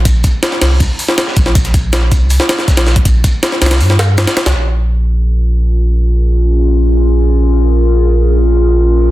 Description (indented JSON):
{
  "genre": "drum and bass, jungle",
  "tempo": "160 BPM",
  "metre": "4/4",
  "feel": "straight",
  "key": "Bb dorian",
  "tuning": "A4 = 440 Hz",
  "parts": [
    { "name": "saturated sub bass", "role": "bass", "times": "0.0-9.1 s", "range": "Bb1 to G2", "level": "-11 LUFS", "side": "equal", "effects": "none" },
    { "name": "crunchy breakbeat drum kit", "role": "drums", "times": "0.1-4.5 s", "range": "hi-hat, shaker, snare drum", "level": "-24 LUFS", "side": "right 1 dB", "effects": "high-pass filter on hats, high-pass filter on snare, high-pass filter on perc, high-pass filter on room" },
    { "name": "jungle sampler-style drum kit", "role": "drums", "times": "0.1-4.5 s", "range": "hi-hat, kick drum, snare drum", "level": "-12 LUFS", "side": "equal", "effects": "none" },
    { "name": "warbly tape-like pad", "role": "sustained chords", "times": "5.5-9.1 s", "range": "Db4 to Bb4", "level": "-15 LUFS", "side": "left 1 dB", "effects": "chorus, built-in reverb" }
  ],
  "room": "light reverb, studio reverb",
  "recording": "dense, heavily limited modern master",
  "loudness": "-9 LUFS",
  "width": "side -16 dB against mid",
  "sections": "0.0-4.6 A section; 4.6-9.1 B section",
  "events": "none",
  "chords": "0.0 Bbsus2; 4.6 Bbm7"
}